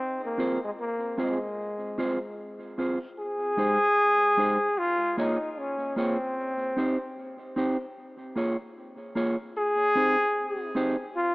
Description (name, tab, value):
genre	reggae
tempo	75 BPM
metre	4/4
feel	swing 62% on 16ths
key	Ab major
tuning	A4 = 439 Hz
part	clear trombone	melody	0.0-11.3 s	Ab3 to Ab4	-25 LUFS	equal	tape echo
part	mellow electric guitar	accompaniment	0.4-11.0 s	Ab3 to Db5	-30 LUFS	right 1 dB	tape echo
room	moderate plate reverb, RT60 2.6 s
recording	small speaker sound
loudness	-24 LUFS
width	side -24 dB against mid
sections	0.0-3.2 A section; 3.2-11.3 B section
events	none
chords	0.0 Fm; 3.2 Abmaj7; 4.8 Bbm7; 6.4 Cm; 8.0 Bbm7; 9.6 Abmaj7